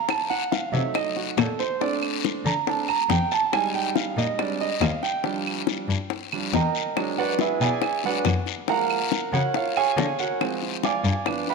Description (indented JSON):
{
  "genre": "Afro-Cuban jazz",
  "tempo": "140 BPM",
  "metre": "4/4",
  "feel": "straight",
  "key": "Bb major",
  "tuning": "A4 = 436 Hz",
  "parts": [
    { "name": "clear concert grand piano", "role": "accompaniment", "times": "0.0-11.5 s", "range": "F3 to D6", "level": "-24 LUFS", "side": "right 6 dB", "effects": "none" },
    { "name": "bongos", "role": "percussion", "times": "0.1-11.5 s", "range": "none", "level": "-29 LUFS", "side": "left 12 dB", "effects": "none" },
    { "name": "claves", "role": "percussion", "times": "0.1-11.5 s", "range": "none", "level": "-36 LUFS", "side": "right 10 dB", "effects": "none" },
    { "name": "guiro", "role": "percussion", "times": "0.1-11.5 s", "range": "none", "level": "-33 LUFS", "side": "left 13 dB", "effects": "none" },
    { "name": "dark cello", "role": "bass", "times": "0.7-11.1 s", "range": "Eb2 to D3", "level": "-25 LUFS", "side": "left 3 dB", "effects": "none" }
  ],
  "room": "wet echo chamber reverb, RT60 2.1 s",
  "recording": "1960s-style stereo with parts hard left and right",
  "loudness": "-22 LUFS",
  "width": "side -4 dB against mid",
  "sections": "0.0-5.2 A section; 5.2-11.5 A section",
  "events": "grand piano solo 0.0-11.5",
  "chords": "0.1 F7b9; 1.8 Bbmaj9; 3.5 Fm7; 4.4 Bb13 (rootless); 5.2 Ebmaj7; 7.0 E9; 8.7 Gbmaj9; 10.4 Dm7b5"
}